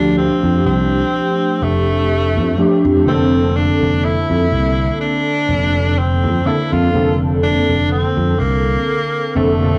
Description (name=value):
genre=vaporwave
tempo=62 BPM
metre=4/4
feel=swing 55% on 16ths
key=unclear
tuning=A4 = 440 Hz
part: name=bright tenor saxophone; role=melody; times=0.0-9.8 s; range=A3 to F4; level=-22 LUFS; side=equal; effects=tape echo
part: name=warbly lo-fi synth keys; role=accompaniment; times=0.0-9.8 s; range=Bb2 to A4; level=-19 LUFS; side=equal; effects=analog chorus, vintage 12-bit sampler grit, cassette tape
part: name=fretless electric bass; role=bass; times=0.0-9.8 s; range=F1 to F2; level=-20 LUFS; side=equal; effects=none
room=moderate studio reverb, RT60 0.6 s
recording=home recording on cassette, small room ambience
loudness=-16 LUFS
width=mono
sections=0.0-9.8 A section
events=none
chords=0.0 F69; 3.1 Bbmaj9/F